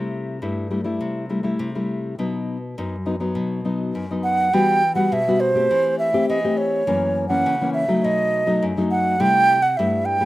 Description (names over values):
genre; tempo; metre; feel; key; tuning
samba; 103 BPM; 4/4; straight; E harmonic minor; A4 = 443 Hz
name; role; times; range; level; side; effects
nylon-string guitar; accompaniment; 0.0-10.3 s; F#2 to G4; -22 LUFS; left 2 dB; none
wooden flute; melody; 4.2-10.3 s; C5 to G5; -18 LUFS; right 2 dB; none
room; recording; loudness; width
light reverb; recorded outdoors, with no room sound; -18 LUFS; side -16 dB against mid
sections
0.0-4.5 A section; 4.5-10.3 B section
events
none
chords
0.0 C6; 1.0 Am7/C; 2.2 B; 4.5 Emadd9; 5.7 Am7/E; 6.9 F#7; 8.0 B7; 9.2 C6